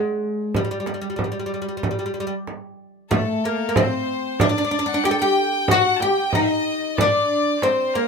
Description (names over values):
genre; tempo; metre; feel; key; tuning
Arabic maqam ensemble; 93 BPM; 4/4; straight; G maqam nahawand from 3.1 s; A4 = 440 Hz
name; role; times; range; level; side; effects
oud; melody; 0.0-8.1 s; G3 to A4; -21 LUFS; left 1 dB; none
frame drum; percussion; 0.5-7.8 s; none; -22 LUFS; right 3 dB; none
bright violin; second line; 3.1-8.1 s; A4 to A5; -27 LUFS; left 4 dB; none
rich studio violin section; second line; 3.1-8.1 s; A4 to G5; -27 LUFS; left 2 dB; none
room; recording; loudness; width
moderate small room reverb, RT60 0.5 s; minimal, uncompressed stereo recording; -19 LUFS; side -5 dB against mid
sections
0.0-3.1 A section; 3.1-8.1 B section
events
none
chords
none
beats
| 0.54 1.18 1.83 2.47 | 3.12 3.76 4.41 5.05 | 5.69 6.34 6.98 7.63